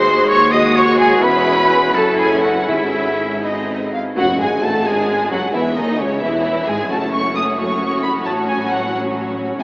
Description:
classical, dramatic, fast romantic movement for symphony orchestra; 79-91 BPM (dotted quarters); 6/8; rubato; A4 = 439 Hz
warm symphonic violin section; melody; 0.0-9.6 s; C#5 to D#6; -21 LUFS; equal
bright oboe; second line; 0.0-3.4 s; E4 to D#5; -23 LUFS; equal
mellow hollow silver concert flute; second line; 0.0-9.6 s; C#5 to D#6; -22 LUFS; equal
warm symphonic violin section; second line; 0.0-9.6 s; C#4 to D#5; -22 LUFS; equal
rich symphonic viola section; accompaniment; 0.0-9.6 s; C#3 to F#4; -22 LUFS; equal
mellow French horn section; sustained chords; 0.0-9.6 s; C#3 to A4; -21 LUFS; equal
rich symphonic cello section; bass; 0.0-9.6 s; C#2 to A2; -25 LUFS; equal
rich symphonic double bass section; bass; 0.0-9.6 s; E1 to D#2; -29 LUFS; equal
timpani; percussion; 2.7-3.4 s; G#2; -36 LUFS; equal
tam-tam; percussion; 4.2-6.0 s; -28 LUFS; equal
wet cathedral reverb, RT60 6.8 s; in a vast, echoing space, AM radio sound; -14 LUFS; side -26 dB against mid
0.0-4.2 A section; 4.2-9.6 B section
band accent 4.2-4.6
0.0 G#7/D#; 1.2 C#m/E; 1.9 F#m7; 2.7 C#m/G#; 3.4 G#; 4.2 F#madd9; 5.5 C#m/E; 6.9 F#m; 8.3 F#m/A
0.53 | 1.23 1.95 | 2.69 3.44 | 4.18 4.86 | 5.55 6.22 | 6.91 7.58 | 8.26 8.92 | 9.59

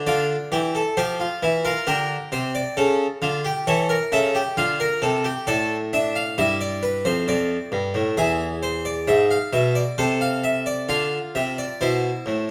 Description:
classical, baroque-style 3-part fugue for harpsichord; 66 BPM; 3/4; straight; D minor; A4 = 439 Hz
harpsichord; solo; 0.0-12.5 s; E2 to F5; -22 LUFS; equal
wet stone room reverb, RT60 1.1 s; close, detailed microphones; -22 LUFS; mono
0.0-10.9 A section; 10.9-12.5 B section
0.1 Dm; 1.9 Gm/D; 2.8 A/C#; 4.6 Dm; 5.5 Am; 7.3 Dm/F; 8.2 E; 10.0 Am/C; 10.9 Dm
| 0.07 0.97 1.87 | 2.77 3.67 4.57 | 5.47 6.38 7.28 | 8.18 9.08 9.98 | 10.89 11.81

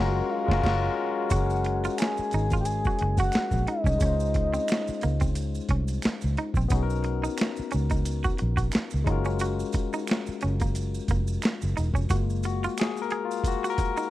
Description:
R&B, neo-soul; 89 BPM; 4/4; swing 55% on 16ths; F# major; A4 = 442 Hz
soft octave-layered synth lead; melody; 0.0-5.7 s; D#5 to G#5; -30 LUFS; equal; chorus, tremolo
barky tine electric piano; accompaniment; 0.0-14.1 s; G#3 to B#4; -31 LUFS; left 7 dB
warm symphonic string section; sustained chords; 0.0-1.3 s; F#3 to A#4; -42 LUFS; right 2 dB
vintage muted fingered electric bass; bass; 0.0-12.7 s; E1 to C#2; -27 LUFS; equal
boom bap sampler-style drum kit; drums; 0.5-14.0 s; crash cymbal, hi-hat, kick drum, snare drum; -27 LUFS; equal
semi-hollow electric guitar; second line; 1.3-14.1 s; A#3 to G#4; -33 LUFS; right 5 dB
maracas and finger snaps; percussion; 1.3-14.1 s; -43 LUFS; right 6 dB
little or no reverb; dry, close 1970s-style studio recording; -24 LUFS; side -15 dB against mid
0.0-1.3 A section; 1.3-12.1 B section; 12.1-14.1 C section
band accent 0.0-1.3; tine electric piano solo 12.1-14.1
0.0 F#maj9; 1.3 F#add9; 4.0 C#maj9; 6.7 Bmaj9; 9.1 F#maj9
0.64 | 1.31 1.99 2.66 3.33 | 4.01 4.68 5.36 6.03 | 6.71 7.38 8.05 8.73 | 9.40 10.08 10.75 11.43 | 12.10 12.77 13.45

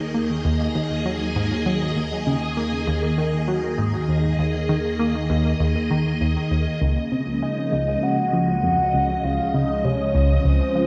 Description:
ambient, sequencer-driven space music; 99 BPM; 4/4; straight; Eb minor; A4 = 440 Hz
phased string machine; sustained chords; 0.0-10.9 s; Db3 to Eb5; -26 LUFS; equal; ensemble chorus, phaser
analog drone; bass; 0.0-10.9 s; Db2 to Eb2; -35 LUFS; equal; chorus
tight sequenced synth; riff; 0.1-10.9 s; Db2 to Bb3; -25 LUFS; equal; chorus, phaser, analog delay
soft octave-layered synth lead; melody; 7.4-10.9 s; C5 to Gb5; -26 LUFS; equal; chorus, analog delay
wet spring reverb, RT60 2.5 s; echo-heavy mix; -22 LUFS; mono
0.0-10.9 A section
fade-in on synth drone 0.0-10.9
0.0 Ebm; 6.8 Dbadd9
0.15 0.76 1.36 | 1.97 2.57 3.18 3.79 | 4.39 5.00 5.60 6.21 | 6.82 7.42 8.03 8.63 | 9.24 9.85 10.45

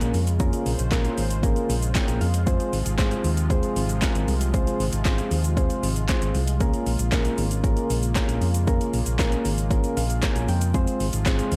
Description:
dance-pop; 116 BPM; 4/4; straight; Bb minor; A4 = 441 Hz
soft electric-piano-like synth keys; accompaniment; 0.0-11.6 s; Ab3 to Ab5; -30 LUFS; equal; chorus, sidechain pumping
warm analog pad; sustained chords; 0.0-11.6 s; C3 to C5; -36 LUFS; equal; chorus, sidechain pumping
hollow-body short-scale fingered electric bass; bass; 0.0-11.6 s; Ab1 to F2; -27 LUFS; equal; sidechain pumping
deep house drum kit; drums; 0.0-11.6 s; handclaps, hi-hat, kick drum, shaker, snare drum; -28 LUFS; equal; overdrive
group handclap; percussion; 0.9-11.4 s; -42 LUFS; equal
digital ambience; dry, gritty hardware recording; -23 LUFS; mono
0.0-11.6 A section
synth keys fill 1.7-2.5, 9.7-10.7
0.0 Bbm7; 2.5 Fm/Ab; 6.6 Bbm7; 10.7 Fm
| 0.40 0.92 1.43 1.95 | 2.47 2.98 3.50 4.02 | 4.54 5.05 5.57 6.09 | 6.61 7.12 7.64 8.16 | 8.67 9.19 9.71 10.23 | 10.74 11.26

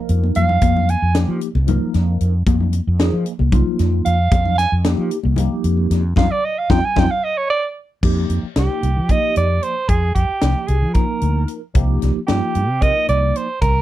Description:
electric jazz fusion; 226 BPM (eighths); 7/8; straight; F dorian; A4 = 440 Hz
tine electric piano; accompaniment; 0.0-13.5 s; F3 to Bb4; -23 LUFS; left 1 dB; medium stereo tremolo, phaser
fretless electric bass; bass; 0.1-13.8 s; C2 to F3; -17 LUFS; equal
tight funk drum kit; drums; 0.1-13.7 s; crash cymbal, hi-hat, kick drum, snare drum; -20 LUFS; equal
congas; percussion; 0.1-7.1 s; -25 LUFS; left 7 dB
warm soprano saxophone; melody; 0.4-1.2, 4.1-13.8 s; G4 to Ab5; -20 LUFS; right 4 dB; slapback echo
little or no reverb; dark, warm production; -15 LUFS; side -14 dB against mid
0.0-8.0 A section; 8.0-13.8 B section
soprano saxophone solo 0.0-8.0; drum fill 0.1-0.6, 7.2-8.0; band accent 6.2-8.0
0.0 F7(no3); 8.0 F9sus4; 11.8 Cm7
0.09 0.36 | 0.62 0.89 1.15 1.42 1.68 1.94 2.21 | 2.47 2.74 3.00 3.26 3.53 3.79 4.06 | 4.32 4.59 4.85 5.12 5.38 5.64 5.91 | 6.17 6.44 6.70 6.97 7.23 7.50 7.76 | 8.03 8.29 8.56 8.83 9.09 9.36 9.62 | 9.89 10.16 10.42 10.69 10.96 11.22 11.49 | 11.76 12.02 12.29 12.56 12.82 13.09 13.36 | 13.62

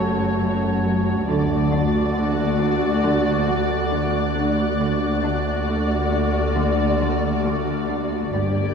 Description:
cinematic, suspense film score; 68 BPM; 4/4; straight; A4 = 440 Hz
muted symphonic violin section; melody; 0.0-8.7 s; C#5 to D5; -27 LUFS; left 3 dB
muted symphonic viola section; accompaniment; 0.0-8.7 s; A3 to G4; -25 LUFS; equal
muted chamber cello section; riff; 0.0-8.6 s; F#2 to D4; -26 LUFS; right 1 dB
muted symphonic cello section; bass; 0.0-8.7 s; D2 to G2; -26 LUFS; equal
muted symphonic double bass section; bass; 0.0-8.7 s; F#1 to D2; -26 LUFS; right 1 dB
muted symphonic violin section; texture; 0.0-8.7 s; C#6 to D7; -33 LUFS; left 2 dB
vibraphone with soft mallets; texture; 0.0-8.7 s; F#4 to A5; -33 LUFS; right 2 dB
wet concert hall reverb, RT60 2.5 s; heard from further back in the room; -19 LUFS; side -6 dB against mid
0.0-8.7 A section
0.0 F#m; 1.3 D
0.40 | 1.28 2.16 3.04 3.91 | 4.80 5.68 6.56 7.45 | 8.34

